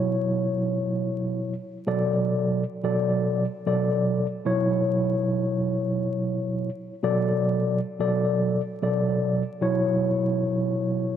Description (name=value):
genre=hip hop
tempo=93 BPM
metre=4/4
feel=swing 54% on 16ths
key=B minor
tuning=A4 = 439 Hz
part: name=mellow tine electric piano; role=solo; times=0.0-11.2 s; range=B2 to D5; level=-23 LUFS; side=equal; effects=medium stereo tremolo, high-pass filter, low-pass filter, digital delay
room=light reverb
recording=dark, warm production, vinyl crackle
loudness=-23 LUFS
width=side -9 dB against mid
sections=0.0-11.2 A section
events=none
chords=0.0 Bsus24; 1.9 Bm7; 4.5 Bsus24; 7.0 Bm7; 9.6 Bsus24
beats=0.59 1.23 | 1.88 2.52 3.17 3.81 | 4.46 5.10 5.75 6.39 | 7.04 7.68 8.33 8.97 | 9.62 10.27 10.91